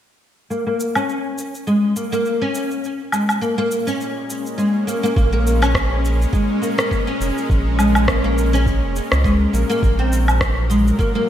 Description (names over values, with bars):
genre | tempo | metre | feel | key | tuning
organic downtempo | 103 BPM | 4/4 | swing 57% on 16ths | Bb minor | A4 = 437 Hz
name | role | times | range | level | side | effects
nylon-string guitar | arpeggios | 0.5-11.3 s | Ab3 to Db4 | -20 LUFS | left 1 dB | ensemble chorus, low-pass filter, digital delay
electronic shaker, woodblock and rim click | drums | 0.5-11.1 s | none | -23 LUFS | equal | gated reverb
bowed-like drone | sustained chords | 3.5-11.3 s | Bb2 to Bb4 | -25 LUFS | equal | built-in reverb, sidechain pumping
round analog bass | bass | 5.2-10.9 s | F1 to Db2 | -18 LUFS | equal | sidechain pumping
electronic kick drum | drums | 5.2-11.1 s | none | -20 LUFS | equal | none
room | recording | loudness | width
moderate lush hall reverb, RT60 1.8 s, digital ambience | bright 1980s-style digital production | -16 LUFS | side -10 dB against mid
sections
0.5-5.2 A section; 5.2-11.3 B section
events
none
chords
0.5 Bbm7; 9.8 Ab7